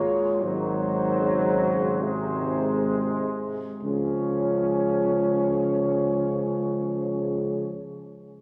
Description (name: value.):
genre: classical, hymn-like piece for brass band.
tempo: 32-41 BPM.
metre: 4/4.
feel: rubato.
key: Db major.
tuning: A4 = 443 Hz.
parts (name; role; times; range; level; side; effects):
dark cornet; melody; 0.0-7.7 s; C5 to Db5; -32 LUFS; equal; none.
mellow French horn section; second line; 0.0-7.7 s; Eb4 to Ab4; -37 LUFS; equal; none.
warm euphonium; accompaniment; 0.0-7.7 s; C3 to F3; -31 LUFS; equal; none.
warm trombone section; accompaniment; 0.0-7.7 s; Gb3 to Db4; -32 LUFS; equal; none.
mellow tuba; bass; 0.4-7.7 s; Ab1 to Db2; -32 LUFS; equal; none.
room: wet church reverb, RT60 3.1 s.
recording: none.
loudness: -25 LUFS.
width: mono.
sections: 0.0-3.8 A section; 3.8-8.4 B section.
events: slowing down 0.0-3.8.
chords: 0.4 Ab7; 3.8 Db.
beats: 0.42 2.01 | 3.84 5.63 7.43.